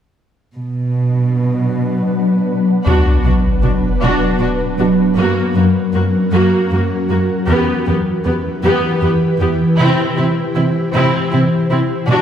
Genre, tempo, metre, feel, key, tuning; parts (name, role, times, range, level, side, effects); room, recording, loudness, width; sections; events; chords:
cinematic; 52 BPM (dotted quarters); 6/8; straight; B phrygian; A4 = 440 Hz
ethereal airy pad; sustained chords; 1.4-12.2 s; E3 to C5; -16 LUFS; left 1 dB; ensemble chorus, built-in reverb, low-pass filter
dark symphonic cello section; bass; 0.6-12.2 s; E2 to C3; -18 LUFS; right 1 dB
rich symphonic viola section; accompaniment; 2.9-12.2 s; A#3 to G4; -18 LUFS; right 1 dB; low-pass filter
sub drop; sound effects; 2.9-5.2 s; -17 LUFS; left 1 dB
wet scoring stage reverb, RT60 1.6 s; heard from further back in the room; -13 LUFS; side -9 dB against mid
0.6-2.9 A section; 2.9-12.2 B section
filter sweep 0.6-2.9; build-up 2.9-12.2; impact 2.9-5.2
0.6 Bm; 5.2 F#; 7.5 Em; 9.8 C